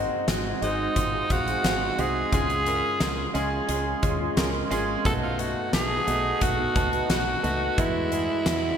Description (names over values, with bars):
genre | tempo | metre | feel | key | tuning
1980s-style pop | 88 BPM | 4/4 | straight | unclear | A4 = 439 Hz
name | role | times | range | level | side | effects
clear grand piano | accompaniment | 0.0-8.8 s | Ab2 to F5 | -28 LUFS | right 2 dB | none
deep dub fingered electric bass | bass | 0.0-8.7 s | Ab1 to E2 | -32 LUFS | equal | none
huge arena drum kit | drums | 0.3-8.6 s | hi-hat, kick drum, snare drum | -29 LUFS | equal | gated reverb
raspy alto saxophone | melody | 0.6-8.8 s | Eb4 to A4 | -26 LUFS | equal | digital delay
mellow synth brass | stabs | 0.6-7.2 s | B3 to C5 | -37 LUFS | left 2 dB | none
room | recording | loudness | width
wet lush hall reverb, RT60 2.8 s | bright 1980s-style digital production | -22 LUFS | side -8 dB against mid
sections
0.0-8.8 A section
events
none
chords
0.0 Ab7; 2.3 Db; 5.1 B7; 7.8 Eadd9